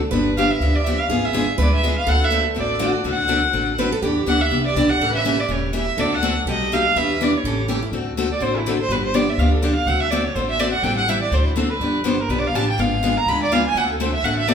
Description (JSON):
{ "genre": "acoustic string swing (jazz manouche)", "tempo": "247 BPM", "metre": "4/4", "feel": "swing 57% on 8ths", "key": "D mixolydian", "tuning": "A4 = 440 Hz", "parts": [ { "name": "picked steel-string acoustic guitar", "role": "second line", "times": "0.1-7.9 s", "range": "E4 to B4", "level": "-27 LUFS", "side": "right 3 dB", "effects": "none" }, { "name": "picked steel-string acoustic guitar", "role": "accompaniment", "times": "0.1-14.5 s", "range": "B2 to A4", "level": "-22 LUFS", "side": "left 2 dB", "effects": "none" }, { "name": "upright bass", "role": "bass", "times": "0.1-14.5 s", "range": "E1 to E2", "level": "-24 LUFS", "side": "equal", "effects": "none" }, { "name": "warm violin", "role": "melody", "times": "0.4-14.5 s", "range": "E4 to B5", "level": "-21 LUFS", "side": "right 2 dB", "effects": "none" } ], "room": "wet large studio reverb, RT60 1.2 s", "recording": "band playing live in one room", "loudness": "-17 LUFS", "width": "side -7 dB against mid", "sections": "0.0-7.9 A section; 7.9-14.5 B section", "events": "violin solo 7.9-14.5", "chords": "0.1 G7; 1.1 G#dim7; 2.1 D7; 4.0 Em7; 5.0 A7; 6.0 D7; 6.5 Baug7; 7.0 Em7; 7.4 A7; 7.9 D7; 8.9 G7; 9.9 D7; 10.8 Am7; 11.3 D7; 11.8 G7; 12.8 G#dim7; 13.7 D7", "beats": "| 0.12 0.36 0.61 0.85 | 1.10 1.34 1.59 1.83 | 2.08 2.32 2.56 2.81 | 3.05 3.29 3.54 3.78 | 4.03 4.27 4.51 4.76 | 5.00 5.25 5.49 5.73 | 5.98 6.22 6.46 6.71 | 6.95 7.19 7.44 7.68 | 7.92 8.17 8.41 8.65 | 8.90 9.14 9.38 9.62 | 9.87 10.11 10.35 10.60 | 10.84 11.08 11.32 11.56 | 11.81 12.05 12.29 12.54 | 12.78 13.02 13.26 13.50 | 13.75 13.99 14.23 14.47" }